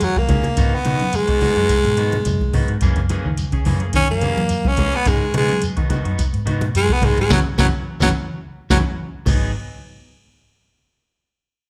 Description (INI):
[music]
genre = afrobeat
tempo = 107 BPM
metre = 4/4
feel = swing 53% on 16ths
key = G# minor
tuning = A4 = 440 Hz
[part]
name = raspy baritone saxophone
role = melody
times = 0.0-8.8 s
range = F#3 to C#4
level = -22 LUFS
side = equal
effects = none
[part]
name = semi-hollow electric guitar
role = arpeggios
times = 0.0-9.4 s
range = G#2 to G#3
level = -29 LUFS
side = equal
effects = none
[part]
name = vintage muted fingered electric bass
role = bass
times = 0.0-9.5 s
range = F#1 to F#3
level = -26 LUFS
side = equal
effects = none
[part]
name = soft vintage rhythm box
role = drums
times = 0.0-9.4 s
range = crash cymbal, hi-hat, kick drum, snare drum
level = -23 LUFS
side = equal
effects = none
[part]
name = congas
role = percussion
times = 0.0-9.4 s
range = none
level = -27 LUFS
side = equal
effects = none
[part]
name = shekere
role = percussion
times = 0.0-9.4 s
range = none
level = -32 LUFS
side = equal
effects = none
[part]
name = electric guitar at the edge of break-up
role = stabs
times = 0.3-9.5 s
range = D#3 to G#4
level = -32 LUFS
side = equal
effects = none
[sound]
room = moderate large studio reverb, RT60 1.3 s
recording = band playing live in one room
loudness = -19 LUFS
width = mono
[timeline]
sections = 0.0-9.5 A section; 9.5-11.7 B section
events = drum fill 0.0-0.6, 8.7-9.5; baritone saxophone solo 0.0-9.5; band accent 7.3-9.5; kick and snare drop out 8.4-9.5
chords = 0.0 F#9; 0.6 G#m7; 2.8 F#9; 5.1 G#m7; 7.3 F#5; 9.3 G#m7; 9.5 N.C.